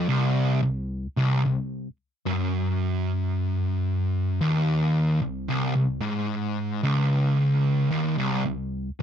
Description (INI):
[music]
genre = metal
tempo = 56 BPM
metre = 4/4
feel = straight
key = unclear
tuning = A4 = 440 Hz
[part]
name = fuzz guitar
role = solo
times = 0.0-9.0 s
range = C2 to Ab2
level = -22 LUFS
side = equal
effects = distortion
[sound]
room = light reverb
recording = dry, close 1970s-style studio recording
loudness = -23 LUFS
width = side -8 dB against mid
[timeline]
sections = 0.6-9.0 A section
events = none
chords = none